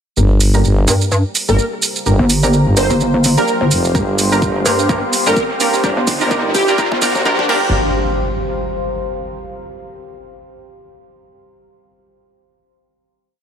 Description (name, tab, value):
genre	bass house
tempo	127 BPM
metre	4/4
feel	swing 57% on 16ths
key	G minor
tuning	A4 = 439 Hz
part	orchestra-hit-like synth stab	stabs	0.2-7.7 s	Bb3 to Bb4	-20 LUFS	right 1 dB	built-in reverb, vintage 12-bit sampler grit, sidechain pumping, tape echo
part	growling FM bass	bass	0.2-7.7 s	F1 to G1	-15 LUFS	equal	overdrive, sidechain pumping
part	house drum kit	drums	0.2-7.6 s	crash cymbal, hi-hat, shaker	-20 LUFS	right 4 dB	none
part	riser and impact	sound effects	3.4-9.4 s	none	-24 LUFS	equal	none
part	deep dark ambient pad	texture	1.7-9.6 s	G4 to C6	-22 LUFS	left 1 dB	chorus, built-in reverb, sidechain pumping
part	pulsing pluck wobble bass	bass	0.9-7.5 s	G1 to G2	-15 LUFS	equal	chorus, overdrive, sidechain pumping
part	plucky unison lead	melody	1.5-7.6 s	D4 to C5	-21 LUFS	equal	ensemble chorus, tape echo
part	electronic kick drum	drums	3.9-7.6 s	none	-20 LUFS	equal	none
room	moderate lush hall reverb, RT60 1.8 s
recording	high-pass filter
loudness	-12 LUFS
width	side -8 dB against mid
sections	0.2-7.7 build; 7.7-9.6 final chord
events	build-up 0.2-7.7; filter sweep on synth stab 0.2-7.7; filter sweep 0.2-7.7; riser 3.4-7.7; drum fill 3.9-7.7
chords	0.2 Gm